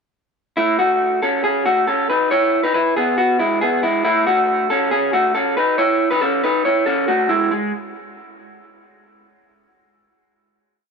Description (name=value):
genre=indie pop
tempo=138 BPM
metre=4/4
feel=straight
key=unclear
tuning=A4 = 440 Hz
part: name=electric guitar through a small old amp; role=solo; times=0.6-7.7 s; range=G#3 to C#5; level=-16 LUFS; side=equal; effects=none
room=light reverb, digital ambience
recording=none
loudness=-15 LUFS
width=side -5 dB against mid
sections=0.6-7.5 verse; 7.5-9.2 final note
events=none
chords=0.6 F#m7; 2.3 E; 4.0 A; 7.5 N.C.